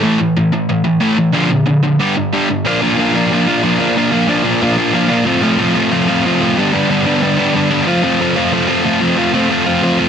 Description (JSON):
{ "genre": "punk", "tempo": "184 BPM", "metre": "4/4", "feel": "straight", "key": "unclear", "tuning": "A4 = 440 Hz", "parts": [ { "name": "overdriven electric guitar", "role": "solo", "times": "0.0-10.1 s", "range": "G2 to F4", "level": "-12 LUFS", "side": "equal", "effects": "none" } ], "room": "moderate studio reverb, RT60 0.5 s", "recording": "dense, heavily limited modern master", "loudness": "-12 LUFS", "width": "side -8 dB against mid", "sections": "0.0-2.6 A section; 2.6-7.9 B section; 7.9-10.1 C section", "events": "none", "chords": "0.0 A5; 1.3 Bb; 2.0 G5; 2.6 Bb; 5.3 F/A; 6.6 G; 7.9 F" }